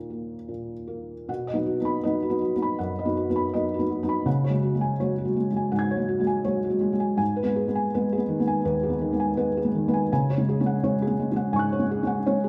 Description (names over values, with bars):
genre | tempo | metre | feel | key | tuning
neoclassical minimalist piano | 82 BPM | 4/4 | rubato | unclear | A4 = 439 Hz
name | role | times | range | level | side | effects
felt-muted upright piano | solo | 0.0-12.5 s | D#2 to G#6 | -25 LUFS | equal | none
room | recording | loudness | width
wet large studio reverb, RT60 1.4 s | band playing live in one room | -25 LUFS | mono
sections
0.0-1.3 A section; 1.3-12.5 B section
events
none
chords
0.0 D#5; 1.3 B; 4.3 C#sus4; 7.2 G#m; 10.1 C#sus4